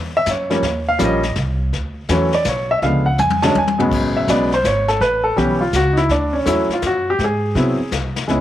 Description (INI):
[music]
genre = jazz piano trio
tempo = 164 BPM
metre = 3/4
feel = swing 65% on 8ths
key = A major from 3.9 s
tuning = A4 = 440 Hz
[part]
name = upright bass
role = bass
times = 0.0-8.4 s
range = G#1 to B#2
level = -22 LUFS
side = right 1 dB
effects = none
[part]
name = clear baby grand piano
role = melody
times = 0.2-8.4 s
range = C#3 to A5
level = -16 LUFS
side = equal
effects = none
[part]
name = jazz brush drum kit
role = drums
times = 0.3-8.4 s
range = brushed snare drum, crash cymbal, hi-hat, kick drum, snare drum, toms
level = -25 LUFS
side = left 5 dB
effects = none
[sound]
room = light reverb, small room ambience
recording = 1960s-style stereo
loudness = -15 LUFS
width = side -12 dB against mid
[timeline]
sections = 0.0-3.9 A section; 3.9-8.4 B section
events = drum fill 3.2-3.9; grand piano solo 3.9-8.4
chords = 0.0 Bsus4 (rootless); 0.6 D#7sus2; 1.7 Dmaj7sus2; 2.8 C#7b9; 3.5 E69; 3.9 Amaj13; 5.0 A9; 6.1 Dmaj9; 7.2 G#7